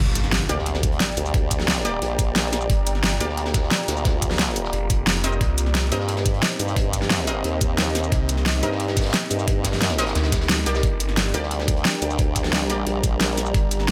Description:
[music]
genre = dark technical drum and bass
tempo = 177 BPM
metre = 4/4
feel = straight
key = G minor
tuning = A4 = 445 Hz
[part]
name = deep dark ambient pad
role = sustained chords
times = 0.0-13.9 s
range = G3 to D5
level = -34 LUFS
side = equal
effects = chorus, built-in reverb, sidechain pumping
[part]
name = phased detuned saw bass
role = bass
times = 0.0-0.5, 2.7-5.9, 8.1-11.3, 13.5-13.9 s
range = F1 to D2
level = -26 LUFS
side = equal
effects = phaser, overdrive, sidechain pumping
[part]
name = impact and swell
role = sound effects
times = 0.0-1.3, 10.3-10.8 s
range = none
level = -35 LUFS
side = equal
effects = none
[part]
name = airy breathy pad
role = texture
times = 0.0-13.9 s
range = C4 to Bb5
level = -34 LUFS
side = equal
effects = chorus, sidechain pumping
[part]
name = crunchy breakbeat drum kit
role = drums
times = 0.2-13.9 s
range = hi-hat, snare drum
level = -37 LUFS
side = equal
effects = none
[part]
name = dubstep drum kit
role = drums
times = 0.2-13.9 s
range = hi-hat, shaker, snare drum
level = -25 LUFS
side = equal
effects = overdrive
[part]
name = orchestra-hit-like synth stab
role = stabs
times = 0.5-12.8 s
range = Bb3 to Eb5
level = -32 LUFS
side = equal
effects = built-in reverb, tape echo
[part]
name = formant-sweep wobble bass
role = bass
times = 0.5-13.5 s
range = Bb1 to G2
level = -28 LUFS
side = equal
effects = chorus
[part]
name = electronic kick drum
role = drums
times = 0.8-13.6 s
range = none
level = -24 LUFS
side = equal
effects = overdrive
[sound]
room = light reverb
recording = none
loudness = -22 LUFS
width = mono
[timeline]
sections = 0.0-13.9 A section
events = drop 0.0-13.9; impact 0.0-1.3; swell 10.3-10.8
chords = 0.0 Gm; 5.4 Cm7; 10.8 Gm

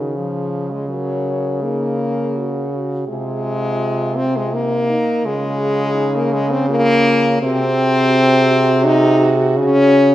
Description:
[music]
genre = classical, lyrical piece for horn quartet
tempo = 83 BPM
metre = 3/4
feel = rubato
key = Db major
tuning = A4 = 442 Hz
[part]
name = mellow French horn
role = melody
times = 0.0-10.1 s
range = Eb4 to Bb4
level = -25 LUFS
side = left 4 dB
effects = none
[part]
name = warm French horn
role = second line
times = 0.0-10.1 s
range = Db4 to Ab4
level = -25 LUFS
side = right 5 dB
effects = none
[part]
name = warm French horn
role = accompaniment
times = 0.0-10.1 s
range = Eb3 to Eb4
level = -17 LUFS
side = left 1 dB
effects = none
[part]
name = clear French horn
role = bass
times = 0.0-10.1 s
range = C3 to Db3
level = -19 LUFS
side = right 2 dB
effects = none
[sound]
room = wet stone room reverb, RT60 1.2 s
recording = none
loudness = -14 LUFS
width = side -13 dB against mid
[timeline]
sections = 0.0-10.1 A section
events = none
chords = 0.0 Db; 0.9 Gb/Db; 3.1 Ab/C; 5.3 Db; 7.4 Ab7/C; 9.6 Db5

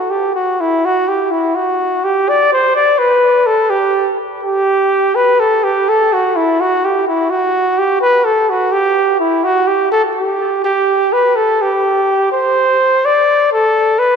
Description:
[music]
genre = mexican folk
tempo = 84 BPM (dotted quarters)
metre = 6/8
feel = rubato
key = G major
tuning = A4 = 439 Hz
[part]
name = mellow trumpet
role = solo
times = 0.0-14.2 s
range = E4 to D5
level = -11 LUFS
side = equal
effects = analog delay
[sound]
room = wet plate reverb, RT60 2.8 s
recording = dreamy mix soaked in reverb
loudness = -11 LUFS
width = side -6 dB against mid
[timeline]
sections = 0.1-11.6 A section; 11.6-14.2 B section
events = none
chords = none

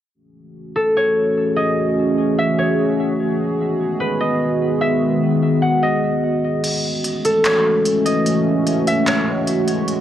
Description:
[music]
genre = hip hop, atmospheric cloud-rap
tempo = 148 BPM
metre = 4/4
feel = half-time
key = F# dorian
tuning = A4 = 442 Hz
[part]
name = dark analog pad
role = sustained chords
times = 0.7-10.0 s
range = D#3 to G#4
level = -18 LUFS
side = equal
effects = chorus, phaser
[part]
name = concert harp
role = melody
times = 0.8-10.0 s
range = A4 to F#5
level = -20 LUFS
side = equal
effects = low-pass filter, ping-pong delay
[part]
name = smooth R&B drum kit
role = drums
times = 6.6-10.0 s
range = crash cymbal, handclaps, hi-hat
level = -24 LUFS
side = equal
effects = none
[sound]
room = light reverb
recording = worn, warbling old tape, cassette tape, warbly pitch drift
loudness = -16 LUFS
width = side -11 dB against mid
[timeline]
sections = 0.1-6.6 A section; 6.6-10.0 B section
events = kick muted 6.6-10.0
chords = 0.1 F#m9; 3.4 G#m7; 6.6 F#m9

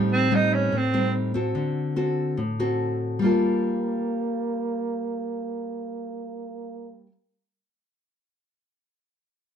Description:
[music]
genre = bossa nova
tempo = 144 BPM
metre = 4/4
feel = straight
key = G minor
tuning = A4 = 440 Hz
[part]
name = nylon-string guitar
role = accompaniment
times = 0.0-7.1 s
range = A2 to A4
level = -24 LUFS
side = left 1 dB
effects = none
[part]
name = breathy tenor saxophone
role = melody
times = 0.1-1.2 s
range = C4 to Eb4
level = -23 LUFS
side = right 3 dB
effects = none
[part]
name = mellow trombone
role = second line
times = 3.2-7.0 s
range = Bb3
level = -31 LUFS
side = right 4 dB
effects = none
[sound]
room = moderate studio reverb, RT60 0.8 s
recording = band playing live in one room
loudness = -23 LUFS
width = side -8 dB against mid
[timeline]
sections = 0.0-3.2 A section; 3.2-6.5 B section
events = tenor saxophone solo 0.0-3.2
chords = 0.0 Am7b5; 1.5 D7; 3.2 Gm9

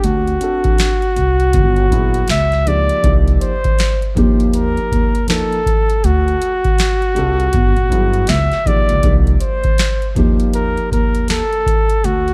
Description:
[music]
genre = hip hop, jazz-hop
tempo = 80 BPM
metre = 4/4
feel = swing 62% on 16ths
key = unclear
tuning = A4 = 442 Hz
[part]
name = mellow flugelhorn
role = melody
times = 0.0-12.3 s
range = F#4 to Fb5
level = -20 LUFS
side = equal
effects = tape echo
[part]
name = upright bass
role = bass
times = 0.0-12.3 s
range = G1 to G2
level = -20 LUFS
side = equal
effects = none
[part]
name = booming analog drum machine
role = drums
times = 0.0-12.3 s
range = hi-hat, kick drum, snare drum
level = -19 LUFS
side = equal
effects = none
[part]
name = dark grand piano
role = accompaniment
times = 0.4-11.4 s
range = F3 to Bb4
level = -25 LUFS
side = equal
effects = none
[sound]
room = little or no reverb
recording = dark, warm production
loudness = -15 LUFS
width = mono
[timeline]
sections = 0.0-12.3 A section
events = none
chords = 0.0 D7; 1.5 Gm; 2.3 Dbm; 3.0 Cm7; 4.2 Ebadd9; 6.0 D7; 7.5 Gm; 8.3 Dbm7; 9.0 Cm7; 10.2 Ebadd9

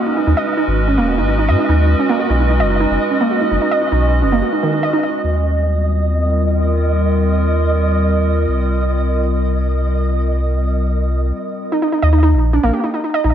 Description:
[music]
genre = IDM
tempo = 148 BPM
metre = 4/4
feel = straight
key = unclear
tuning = A4 = 436 Hz
[part]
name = warbly tape-like pad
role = sustained chords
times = 0.0-11.3 s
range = G3 to Eb5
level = -20 LUFS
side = left 1 dB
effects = chorus, built-in reverb
[part]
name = warbly dusty pluck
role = arpeggios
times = 0.0-5.1, 11.7-13.3 s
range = D#3 to Eb5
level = -17 LUFS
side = right 3 dB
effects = wide subtle chorus, analog delay
[part]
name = flickering grainy texture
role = texture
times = 0.0-11.3 s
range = Eb5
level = -25 LUFS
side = right 3 dB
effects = built-in reverb
[part]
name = warm sub bass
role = bass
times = 0.3-13.3 s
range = Eb1 to Ab2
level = -16 LUFS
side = equal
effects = none
[sound]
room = light reverb, digital ambience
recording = echo-heavy mix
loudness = -14 LUFS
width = side -10 dB against mid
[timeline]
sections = 0.0-5.2 A section; 5.2-11.7 B section; 11.7-13.3 C section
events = break 4.4-5.2; stop 11.3-11.7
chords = 0.0 Abm7; 2.0 Badd9; 5.2 Eb; 8.5 Cm7; 11.7 Eb5

